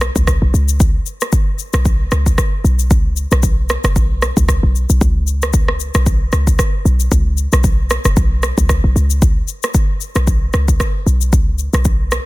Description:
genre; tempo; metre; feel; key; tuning
afrobeats; 114 BPM; 4/4; swing 55% on 16ths; unclear; A4 = 440 Hz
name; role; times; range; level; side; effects
short 808-style bass; bass; 0.0-12.2 s; F#1 to C#2; -15 LUFS; equal; none
afro-pop drum kit; drums; 0.0-12.3 s; kick drum, rim click, shaker; -15 LUFS; equal; soft clipping on snare
room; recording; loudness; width
digital ambience; dense, heavily limited modern master; -12 LUFS; side -20 dB against mid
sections
0.0-12.3 A section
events
none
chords
none

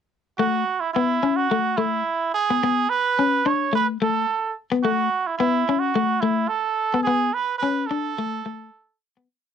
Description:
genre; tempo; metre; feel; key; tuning
highlife; 108 BPM; 4/4; swing 55% on 16ths; A major; A4 = 441 Hz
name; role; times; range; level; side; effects
trumpet with cup mute; melody; 0.4-9.0 s; E4 to C#5; -22 LUFS; right 6 dB; cassette tape
clean electric guitar; accompaniment; 0.4-9.3 s; A3 to D4; -22 LUFS; left 6 dB; cassette tape
room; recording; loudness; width
wet booth ambience, RT60 0.3 s; home recording on cassette; -20 LUFS; side -8 dB against mid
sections
0.4-9.3 A section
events
fade-out 7.1-9.3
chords
0.4 Aadd9; 2.6 Bm69; 3.7 N.C.; 4.8 Aadd9; 7.1 Bm13; 8.2 N.C.

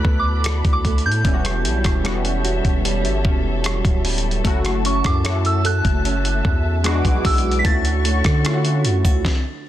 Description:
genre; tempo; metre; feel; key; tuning
contemporary R&B; 75 BPM; 4/4; straight; E dorian; A4 = 441 Hz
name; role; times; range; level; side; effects
soft synth bell; melody; 0.0-9.7 s; C#6 to B6; -26 LUFS; right 1 dB; chorus, tremolo, tape echo
warm analog keys; accompaniment; 0.0-9.3 s; G3 to A4; -26 LUFS; left 1 dB; chorus
muted studio string section; sustained chords; 0.0-9.2 s; F#4 to D6; -30 LUFS; left 2 dB; none
nylon-string guitar; arpeggios; 0.0-9.7 s; D3 to A4; -29 LUFS; right 9 dB; tape echo
long sustained 808-style bass; bass; 0.0-9.2 s; D1 to D3; -21 LUFS; equal; none
dusty soul sampler-style drum kit; drums; 0.0-9.4 s; hi-hat, kick drum, rim click, snare drum; -20 LUFS; equal; vintage 12-bit sampler grit, soft clipping on snare
room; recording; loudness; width
digital ambience; dense, heavily limited modern master; -16 LUFS; side -13 dB against mid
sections
0.0-9.7 A section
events
stop 9.2-9.7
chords
0.0 D6; 1.2 Em69; 4.4 F#m7; 6.8 E7; 7.6 Dmaj7

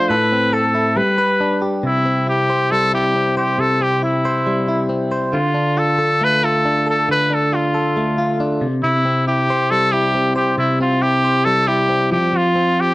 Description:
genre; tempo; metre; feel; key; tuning
indie pop; 137 BPM; 4/4; straight; C major; A4 = 441 Hz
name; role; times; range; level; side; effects
clear trumpet; melody; 0.0-12.9 s; E4 to C5; -17 LUFS; equal; none
direct-recorded clean electric guitar; arpeggios; 0.0-12.9 s; A2 to C5; -18 LUFS; equal; spring reverb, slapback echo
room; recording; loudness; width
light reverb; dry, close 1970s-style studio recording; -15 LUFS; side -19 dB against mid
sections
0.0-1.8 A section; 1.8-12.9 B section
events
none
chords
0.1 Am; 1.0 G; 1.8 C; 5.3 Dm; 8.6 C; 12.1 Fsus2

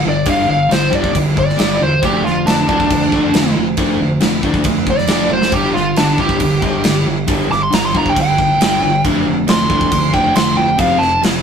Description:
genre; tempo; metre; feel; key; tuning
hard rock; 137 BPM; 4/4; straight; unclear; A4 = 440 Hz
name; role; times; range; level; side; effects
bluesy overdriven lead guitar; melody; 0.0-11.2 s; D4 to D6; -16 LUFS; right 1 dB; distortion
crunchy overdriven guitar; riff; 0.0-11.4 s; F2 to D4; -17 LUFS; equal; none
growling fingered electric bass; bass; 0.0-11.4 s; E1 to G1; -24 LUFS; equal; overdrive
gated 80s drum kit; drums; 0.3-11.3 s; crash cymbal, kick drum, snare drum, toms; -18 LUFS; equal; none
room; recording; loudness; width
moderate studio reverb, RT60 0.5 s; rough rehearsal-room recording; -12 LUFS; side -7 dB against mid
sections
0.0-11.4 A section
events
lead electric guitar solo 0.0-11.4; drum fill 5.3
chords
0.0 G5; 2.0 Dm/F; 5.5 G5; 9.0 Dm/F; 10.8 F5

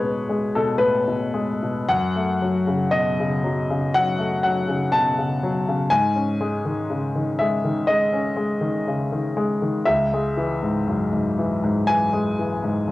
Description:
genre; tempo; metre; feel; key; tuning
neoclassical minimalist piano; 60 BPM; 4/4; rubato; C# minor; A4 = 441 Hz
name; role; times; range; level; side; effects
warm grand piano; solo; 0.0-12.9 s; C#2 to A5; -20 LUFS; left 1 dB; cassette tape
room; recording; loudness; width
wet studio reverb, RT60 0.5 s; home recording on cassette; -20 LUFS; side -17 dB against mid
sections
0.0-12.9 A section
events
none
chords
0.0 E; 1.9 F#m; 5.9 G#sus4; 9.9 C#m

